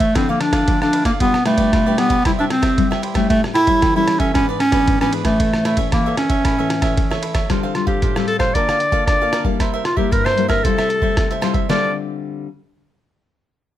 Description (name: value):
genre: samba and choro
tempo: 114 BPM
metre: 4/4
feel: straight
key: D minor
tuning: A4 = 440 Hz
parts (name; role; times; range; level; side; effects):
- bright clarinet; melody; 0.0-11.9 s; A3 to D5; -17 LUFS; equal; none
- cavaquinho; accompaniment; 0.0-11.9 s; D4 to A5; -26 LUFS; right 5 dB; none
- nylon-string guitar; accompaniment; 0.0-12.5 s; G2 to A4; -23 LUFS; left 7 dB; none
- lo-fi sampler-style drum kit; drums; 0.0-11.8 s; hi-hat, kick drum, ride cymbal, rim click, snare drum; -20 LUFS; right 1 dB; none
room: light reverb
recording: close, detailed microphones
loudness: -15 LUFS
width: side -12 dB against mid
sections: 0.0-7.5 A section; 7.5-11.7 B section; 11.7-13.8 C section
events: none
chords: 0.2 Dmadd9; 1.2 G7/B; 2.3 C; 3.3 A7; 4.4 E7/G#; 5.4 A; 7.5 Dm7; 8.6 Bbmaj7/D; 9.6 C7; 10.6 Fmaj9/C; 11.7 Dm7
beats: 0.15 0.68 | 1.20 1.73 2.25 2.78 | 3.30 3.83 4.35 4.88 | 5.40 5.93 6.45 6.97 | 7.50 8.03 8.55 9.07 | 9.60 10.12 10.65 11.17 | 11.70 12.22